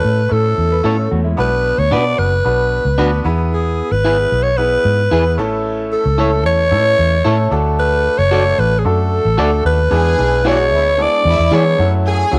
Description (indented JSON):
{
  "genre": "soul",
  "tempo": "112 BPM",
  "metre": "4/4",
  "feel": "straight",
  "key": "E mixolydian",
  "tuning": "A4 = 439 Hz",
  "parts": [
    { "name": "raspy alto saxophone", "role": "melody", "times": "0.0-11.9 s", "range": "G#4 to D5", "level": "-18 LUFS", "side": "equal", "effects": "none" },
    { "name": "bright upright piano", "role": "accompaniment", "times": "0.0-12.4 s", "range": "F#3 to B4", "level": "-24 LUFS", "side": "equal", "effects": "none" },
    { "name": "vintage muted fingered electric bass", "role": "bass", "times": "0.0-12.4 s", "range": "F#1 to E3", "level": "-19 LUFS", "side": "equal", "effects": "none" },
    { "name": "mellow electric guitar", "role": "riff", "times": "0.7-1.5 s", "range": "G#3 to B4", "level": "-27 LUFS", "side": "equal", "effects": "subtle chorus" },
    { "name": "electric guitar at the edge of break-up", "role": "stabs", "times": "0.8-11.6 s", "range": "D4 to D5", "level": "-24 LUFS", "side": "equal", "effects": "vibrato effect" },
    { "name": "dark studio string section", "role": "second line", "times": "9.9-12.4 s", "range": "D4 to G#5", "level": "-24 LUFS", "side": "equal", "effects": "none" }
  ],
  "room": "light reverb",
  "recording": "none",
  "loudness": "-15 LUFS",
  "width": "mono",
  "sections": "0.0-1.4 A section; 1.4-9.9 B section; 9.9-12.4 C section",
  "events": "none",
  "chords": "0.0 A; 1.4 Bm; 3.3 E; 5.4 A; 7.5 D; 9.9 E7; 11.8 F#m7"
}